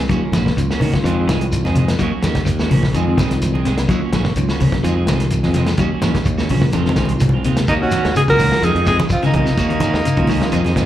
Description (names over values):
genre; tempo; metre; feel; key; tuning
afrobeat; 126 BPM; 4/4; straight; Eb dorian; A4 = 440 Hz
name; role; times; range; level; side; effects
modern bright fingered electric bass; bass; 0.0-10.9 s; Bb1 to Eb3; -20 LUFS; equal; none
shekere; percussion; 0.0-10.9 s; none; -29 LUFS; equal; none
mellow tine electric piano; accompaniment; 0.1-10.9 s; Gb3 to Eb5; -25 LUFS; left 1 dB; fast stereo tremolo
clean electric guitar; arpeggios; 0.1-10.7 s; C3 to Gb3; -22 LUFS; left 4 dB; none
electric guitar at the edge of break-up; stabs; 0.1-10.9 s; Eb3 to Ab4; -24 LUFS; right 8 dB; lush chorus, slapback echo
warm soul drum kit; drums; 0.1-10.9 s; hi-hat, kick drum, snare drum; -22 LUFS; equal; none
congas; percussion; 0.1-10.8 s; none; -22 LUFS; right 1 dB; none
breathy alto saxophone; melody; 7.7-10.9 s; Eb4 to Bb4; -18 LUFS; equal; slapback echo
raspy alto saxophone; second line; 7.7-10.9 s; Bb3 to Gb4; -26 LUFS; right 3 dB; slapback echo, tape echo
room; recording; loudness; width
light reverb; live gig heard through the venue's PA, club reverb; -14 LUFS; side -12 dB against mid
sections
0.0-7.7 A section; 7.7-10.9 B section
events
drum fill 6.7-7.7; tine electric piano fill 10.5-10.9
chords
0.1 Ebm7; 1.0 Fm7; 2.0 Ebm7; 2.9 Fm7; 3.9 Ebm7; 4.8 Fm7; 5.8 Ebm7; 6.7 Fm7; 7.7 Ebm7; 8.6 Fm7; 9.6 Ebm7